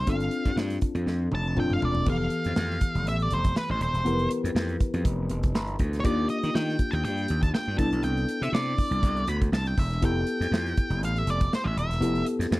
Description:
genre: polished 1980s jazz-funk pop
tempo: 121 BPM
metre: 4/4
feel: swing 54% on 16ths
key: unclear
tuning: A4 = 440 Hz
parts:
  - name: octave-fuzz lead guitar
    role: melody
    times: 0.0-12.2 s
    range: B4 to B5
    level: -31 LUFS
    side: right 1 dB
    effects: distortion
  - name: tine electric piano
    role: accompaniment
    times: 0.0-12.6 s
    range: E3 to B4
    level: -30 LUFS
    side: left 2 dB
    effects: analog chorus
  - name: gritty slap bass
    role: bass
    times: 0.0-12.6 s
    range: Eb1 to Eb3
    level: -28 LUFS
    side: equal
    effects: overdrive
  - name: modern studio drum kit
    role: drums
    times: 0.1-12.6 s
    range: crash cymbal, hi-hat, kick drum, snare drum, toms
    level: -28 LUFS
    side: equal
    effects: none
room: little or no reverb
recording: dry, close 1970s-style studio recording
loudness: -24 LUFS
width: side -19 dB against mid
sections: 0.0-2.1 A section; 2.1-12.6 B section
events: drum fill 1.1-2.1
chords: 0.1 G9sus4; 2.1 Fmaj9#11; 6.0 Ebmaj7; 7.8 Cmaj13; 10.0 Fmaj9#11

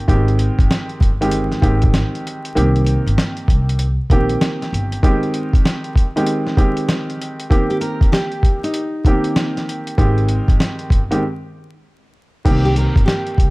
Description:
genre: hip hop, boom-bap hip-hop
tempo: 97 BPM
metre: 4/4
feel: swing 63% on 16ths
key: C minor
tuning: A4 = 440 Hz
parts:
  - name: nylon-string guitar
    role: melody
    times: 0.0, 7.7-13.5 s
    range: Eb4 to Bb4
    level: -24 LUFS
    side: equal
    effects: digital delay
  - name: dark grand piano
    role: accompaniment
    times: 0.0-13.5 s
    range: Eb3 to G4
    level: -20 LUFS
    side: equal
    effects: cassette tape
  - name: upright bass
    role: bass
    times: 0.1-5.0, 10.0-13.5 s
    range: G1 to C2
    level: -18 LUFS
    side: equal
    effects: none
  - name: dusty soul sampler-style drum kit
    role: drums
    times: 0.1-13.5 s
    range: crash cymbal, hi-hat, kick drum, snare drum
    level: -16 LUFS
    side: equal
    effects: none
room: studio ambience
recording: dark, warm production, vinyl crackle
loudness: -14 LUFS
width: side -23 dB against mid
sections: 0.0-12.5 A section; 12.5-13.5 A section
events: kick muted 2.6-3.2; break 11.2-12.5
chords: 0.1 Abmaj7; 2.6 Cm7; 5.0 Abmaj7; 7.5 Cm7; 10.0 Abmaj7; 12.5 Cm7

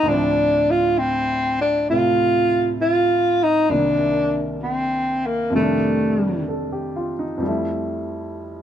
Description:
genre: jazz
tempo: 66 BPM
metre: 4/4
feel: swing 69% on 8ths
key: unclear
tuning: A4 = 440 Hz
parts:
  - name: breathy tenor saxophone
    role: melody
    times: 0.0-6.4 s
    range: A3 to F4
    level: -18 LUFS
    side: equal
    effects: none
  - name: warm baby grand piano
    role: accompaniment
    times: 0.0-8.6 s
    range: C2 to D5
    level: -24 LUFS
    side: equal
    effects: none
room: light reverb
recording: dark, warm production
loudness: -18 LUFS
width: side -10 dB against mid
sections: 0.0-7.4 A section; 7.4-8.6 B section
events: none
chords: 0.1 Dm7; 3.7 Cm9; 5.5 F13; 7.4 Fmaj7

